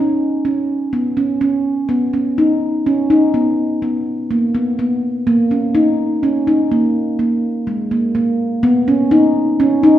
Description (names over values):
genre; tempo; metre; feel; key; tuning
contemporary instrumental, contemporary; 249 BPM (eighths); 7/8; straight; unclear; A4 = 440 Hz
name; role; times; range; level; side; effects
handpan; solo; 0.0-10.0 s; G#3 to D#4; -13 LUFS; equal; none
room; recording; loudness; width
wet recital hall reverb, RT60 1.4 s; heard from further back in the room; -14 LUFS; side -12 dB against mid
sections
0.0-8.6 A section; 8.6-10.0 A section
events
none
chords
none